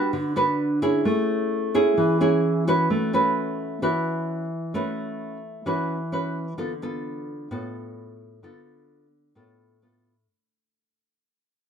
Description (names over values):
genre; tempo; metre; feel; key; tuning
bossa nova; 130 BPM; 4/4; straight; A major; A4 = 441 Hz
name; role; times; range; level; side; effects
nylon-string guitar; solo; 0.0-10.3 s; A2 to B4; -22 LUFS; right 1 dB; none
room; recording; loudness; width
light reverb; none; -22 LUFS; side -7 dB against mid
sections
0.0-2.9 A section; 2.9-10.3 B section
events
fade-out 2.9-10.3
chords
0.0 Gmaj7 (rootless); 1.1 Amaj7; 2.9 A69; 6.6 Dm6